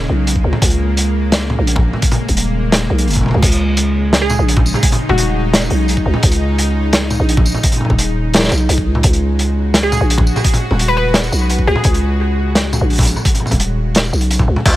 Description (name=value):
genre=half-time drum and bass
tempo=171 BPM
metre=4/4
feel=half-time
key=unclear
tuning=A4 = 440 Hz
part: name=bowed-like drone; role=sustained chords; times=0.0-14.6 s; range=C#3 to F#4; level=-22 LUFS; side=equal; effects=built-in reverb, sidechain pumping
part: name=growling 808-style bass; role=bass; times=0.0-14.8 s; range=D#1 to C#2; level=-16 LUFS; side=equal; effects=none
part: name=crunchy breakbeat drum kit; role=drums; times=0.3-14.7 s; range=crash cymbal, hi-hat, snare drum, tambourine, toms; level=-16 LUFS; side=equal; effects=none
part: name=electronic kick drum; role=drums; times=0.4-14.7 s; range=none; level=-15 LUFS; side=equal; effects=overdrive
part: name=glassy wavetable pluck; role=melody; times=4.2-5.4, 9.8-12.2 s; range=F#4 to B4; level=-21 LUFS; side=equal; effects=chorus, digital delay
room=small room ambience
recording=none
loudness=-12 LUFS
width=side -15 dB against mid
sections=0.0-14.7 A section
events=drop 0.0-14.7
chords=0.0 C#5